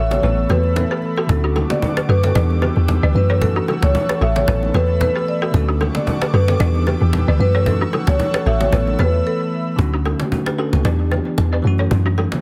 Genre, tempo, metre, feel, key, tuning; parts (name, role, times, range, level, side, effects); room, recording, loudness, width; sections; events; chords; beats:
afrobeats; 113 BPM; 4/4; swing 55% on 16ths; D major; A4 = 444 Hz
marimba with medium mallets; melody; 0.0-9.6 s; A4 to E5; -25 LUFS; equal
bell-like tine electric piano; accompaniment; 0.0-12.4 s; D3 to B4; -26 LUFS; equal
airy breathy pad; sustained chords; 0.0-9.8 s; A4 to E6; -32 LUFS; equal; chorus
balafon; riff; 0.0-12.3 s; D4 to D5; -28 LUFS; equal; delay
deep log drum bass; bass; 0.0-12.3 s; A1 to F#2; -19 LUFS; equal
cajon; drums; 0.1-12.4 s; -28 LUFS; equal
bongos and congas; percussion; 0.1-12.4 s; -29 LUFS; equal
studio ambience; heavily compressed radio sound, multiband compression; -18 LUFS; mono
0.0-9.8 A section; 9.8-12.4 B section
break 0.0-1.3, 9.3-9.8
0.2 Asus2; 1.3 Dmaj7; 2.4 Em7; 3.1 F#m7; 4.5 Asus2; 5.5 Dmaj7; 6.6 Em7; 7.4 F#m7; 8.7 Asus2; 9.8 Dmaj7; 10.8 Em7; 11.6 F#m7
0.23 0.76 | 1.29 1.82 2.35 2.88 | 3.42 3.95 4.48 5.01 | 5.54 6.07 6.60 7.13 | 7.66 8.19 8.72 9.26 | 9.79 10.32 10.85 11.38 | 11.91